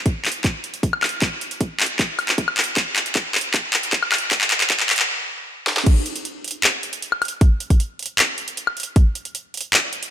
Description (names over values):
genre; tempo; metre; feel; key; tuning
future bass; 155 BPM; 4/4; half-time; none; none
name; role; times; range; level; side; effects
electronic kick drum; drums; 0.1-9.0 s; none; -16 LUFS; equal; none
trap drum kit; drums; 0.1-10.1 s; crash cymbal, handclaps, hi-hat, snare drum, woodblock; -19 LUFS; left 1 dB; none
room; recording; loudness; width
moderate lush hall reverb, RT60 2.0 s; high-pass filter; -18 LUFS; side -10 dB against mid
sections
0.0-5.9 A section; 5.9-10.1 B section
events
build-up 0.0-5.9; drum fill 0.0-5.1, 5.7; filter sweep 0.0-5.9; stop 5.1-5.9; drop 5.9-10.1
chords
none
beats
0.06 0.45 0.83 | 1.22 1.61 1.99 2.38 | 2.77 3.15 3.54 3.93 | 4.32 4.70 5.09 5.48 | 5.87 6.25 6.64 7.03 | 7.41 7.80 8.19 8.57 | 8.96 9.35 9.74